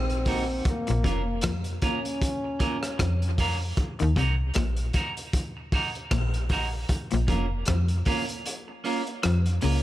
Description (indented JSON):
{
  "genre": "dub reggae",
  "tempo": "77 BPM",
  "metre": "4/4",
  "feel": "swing 58% on 16ths",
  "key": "Eb dorian",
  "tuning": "A4 = 440 Hz",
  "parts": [
    { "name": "breathy trombone", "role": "melody", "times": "0.0-3.4 s", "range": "Bb3 to Db4", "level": "-32 LUFS", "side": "left 1 dB", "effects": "dub echo" },
    { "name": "electric guitar at the edge of break-up", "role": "riff", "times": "0.0-9.8 s", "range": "F2 to F3", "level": "-33 LUFS", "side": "left 4 dB", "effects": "dub echo" },
    { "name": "slap-like FM bass", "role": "bass", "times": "0.0-9.8 s", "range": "F1 to F2", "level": "-26 LUFS", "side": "equal", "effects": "none" },
    { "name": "crunchy breakbeat drum kit", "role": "drums", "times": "0.1-9.8 s", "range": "hi-hat, kick drum, rim click", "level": "-29 LUFS", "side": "equal", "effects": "none" },
    { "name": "clean electric guitar", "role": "accompaniment", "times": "0.3-9.8 s", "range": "Bb3 to Bb4", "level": "-31 LUFS", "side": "right 3 dB", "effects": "high-pass filter, dub echo" }
  ],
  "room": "light reverb, small room ambience",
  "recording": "none",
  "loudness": "-24 LUFS",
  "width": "side -14 dB against mid",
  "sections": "0.0-9.8 A section",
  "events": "filter sweep on clean electric guitar 0.7-6.9; kick muted 8.5-9.8",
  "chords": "0.0 Ebm; 0.7 Bbm; 3.8 Ebm; 6.9 Bbm"
}